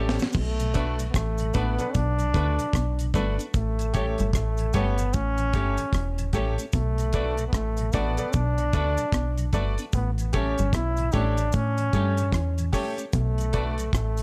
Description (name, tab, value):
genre	roots reggae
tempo	75 BPM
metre	4/4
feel	swing 61% on 16ths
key	B minor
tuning	A4 = 440 Hz
part	clear trombone	melody	0.0-14.2 s	G3 to E4	-32 LUFS	equal	tape echo, plate reverb
part	clean electric guitar	accompaniment	0.0-13.7 s	A3 to G4	-39 LUFS	equal	tape echo, plate reverb
part	tonewheel organ	accompaniment	0.0-14.2 s	A2 to D4	-40 LUFS	equal	overdrive, chorus vibrato, slow rotary speaker
part	mellow electric guitar	riff	0.0-14.2 s	E2 to A3	-36 LUFS	equal	none
part	bright grand piano	stabs	0.0-13.8 s	C#4 to D5	-35 LUFS	equal	plate reverb
part	deep dub fingered electric bass	bass	0.0-14.2 s	E1 to A2	-29 LUFS	equal	none
part	deep reggae drum kit	drums	0.1-14.2 s	crash cymbal, hi-hat, kick drum, rim click, snare drum	-30 LUFS	equal	none
part	cabasa	percussion	0.2-14.2 s	none	-45 LUFS	equal	none
room	light reverb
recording	none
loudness	-25 LUFS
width	mono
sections	0.3-14.2 A section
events	drum fill 0.0-0.3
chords	0.3 Bm7; 3.5 A7; 6.7 Bm7; 9.9 A7; 13.1 Bm7